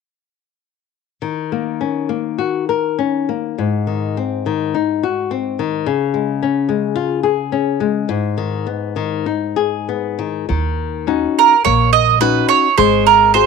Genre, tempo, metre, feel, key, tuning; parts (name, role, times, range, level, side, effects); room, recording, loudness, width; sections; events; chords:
fado-style ballad; 94-112 BPM; 4/4; rubato; Eb minor; A4 = 440 Hz
nylon-string guitar; accompaniment; 1.2-13.5 s; Ab2 to C5; -18 LUFS; left 9 dB
upright bass; bass; 10.5-13.5 s; Ab1 to Eb2; -20 LUFS; right 2 dB
mandolin; melody; 11.4-13.5 s; Bb4 to Eb5; -11 LUFS; right 10 dB
moderate spring reverb, RT60 1.4 s, studio ambience; 1960s-style stereo with parts hard left and right; -15 LUFS; side -5 dB against mid
1.2-10.5 A section; 10.5-13.5 B section
1.2 Ebm7; 3.6 Ab; 5.9 Db; 8.1 Abm; 10.5 Ebm7; 12.8 Ab7